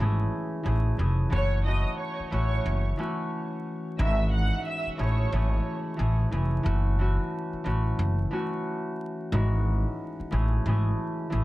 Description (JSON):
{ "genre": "hip hop", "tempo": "90 BPM", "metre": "4/4", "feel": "swing 62% on 16ths", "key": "unclear", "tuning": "A4 = 440 Hz", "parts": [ { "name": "concert harp", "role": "accompaniment", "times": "0.0-11.4 s", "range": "G#2 to G#4", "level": "-31 LUFS", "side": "equal", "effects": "high-pass filter, low-pass filter" }, { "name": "upright bass", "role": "bass", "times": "0.0-11.4 s", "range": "F1 to A1", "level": "-25 LUFS", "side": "equal", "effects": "none" }, { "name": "warm studio violin section", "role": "melody", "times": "1.3-5.5 s", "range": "C#5 to F#6", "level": "-33 LUFS", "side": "right 2 dB", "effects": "high-pass filter, low-pass filter, digital delay" } ], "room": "light reverb", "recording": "dark, warm production, vinyl crackle", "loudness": "-25 LUFS", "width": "side -17 dB against mid", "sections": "0.0-11.4 A section", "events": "none", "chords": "0.0 Amaj7; 1.3 F#m7; 4.0 E69/G#; 5.0 Amaj7; 6.7 F#m7; 9.3 E69/G#" }